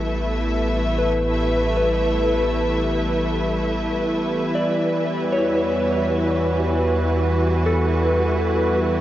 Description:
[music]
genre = ambient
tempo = 77 BPM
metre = 4/4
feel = straight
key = E minor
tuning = A4 = 440 Hz
[part]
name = rich studio string section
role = sustained chords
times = 0.0-9.0 s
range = E3 to E5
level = -22 LUFS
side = right 1 dB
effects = none
[part]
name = deep rumbling drone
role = bass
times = 0.0-9.0 s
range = A1 to E2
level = -25 LUFS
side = equal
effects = built-in reverb
[part]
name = analog drone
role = drone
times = 0.0-9.0 s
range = E3 to B3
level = -27 LUFS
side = left 1 dB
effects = chorus
[part]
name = soft synth bell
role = arpeggios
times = 1.0-9.0 s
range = A4 to D5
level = -26 LUFS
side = left 1 dB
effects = chorus, ping-pong delay
[sound]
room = wet huge ambient reverb, RT60 8.5 s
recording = worn, warbling old tape, cassette tape, warbly pitch drift, nothing above 7.9 kHz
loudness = -18 LUFS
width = side -13 dB against mid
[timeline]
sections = 0.0-9.0 A section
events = none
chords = 0.0 A5; 4.5 Emadd9

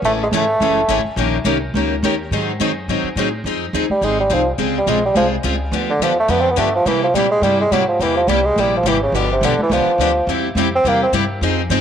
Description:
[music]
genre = acoustic string swing (jazz manouche)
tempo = 211 BPM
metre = 4/4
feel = swing 58% on 8ths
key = unclear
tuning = A4 = 440 Hz
[part]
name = picked plugged-in steel-string acoustic guitar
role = accompaniment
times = 0.0-11.8 s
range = C3 to A#4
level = -23 LUFS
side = right 11 dB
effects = none
[part]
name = picked steel-string acoustic guitar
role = accompaniment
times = 0.0-11.8 s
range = C3 to A#4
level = -21 LUFS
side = left 12 dB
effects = none
[part]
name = upright bass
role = bass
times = 0.0-11.8 s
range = F#1 to C3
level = -23 LUFS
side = equal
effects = none
[part]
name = warm bassoon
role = melody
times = 0.1-1.0, 3.9-11.1 s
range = B2 to C4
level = -17 LUFS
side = right 1 dB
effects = none
[sound]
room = wet spring reverb, RT60 2.3 s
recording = 1960s-style stereo with parts hard left and right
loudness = -15 LUFS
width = side -8 dB against mid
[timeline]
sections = 0.0-3.5 A section; 3.5-11.8 B section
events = bassoon solo 3.5-11.8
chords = 0.0 Amaj7; 1.2 D#7; 2.3 G#7b9; 3.5 Fm7; 4.6 Dbmaj7; 5.7 G7; 6.9 C7; 9.1 G7; 10.3 C

